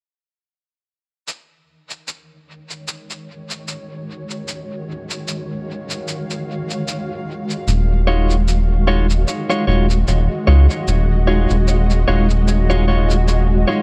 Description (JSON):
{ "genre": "ambient dub", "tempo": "75 BPM", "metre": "4/4", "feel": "swing 56% on 16ths", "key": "Eb minor", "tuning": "A4 = 440 Hz", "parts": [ { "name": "granular cloud pad", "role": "sustained chords", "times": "2.8-13.8 s", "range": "Eb3 to Gb5", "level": "-26 LUFS", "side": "equal", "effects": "built-in reverb" }, { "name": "cabasa", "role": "drums", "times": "1.3-13.5 s", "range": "none", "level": "-31 LUFS", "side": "equal", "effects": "studio reverb, dub echo" }, { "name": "round analog bass", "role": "bass", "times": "7.7-13.6 s", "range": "Eb1 to Db2", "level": "-17 LUFS", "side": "equal", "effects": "tube saturation" }, { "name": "clean electric guitar", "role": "stabs", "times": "8.1-13.8 s", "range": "Ab3 to Db5", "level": "-24 LUFS", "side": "equal", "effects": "dub echo" } ], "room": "little or no reverb", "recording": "dark, warm production", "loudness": "-17 LUFS", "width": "mono", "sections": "1.3-13.8 A section", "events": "fade-in on ambient pad 1.3-13.8", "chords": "1.3 Ebm11" }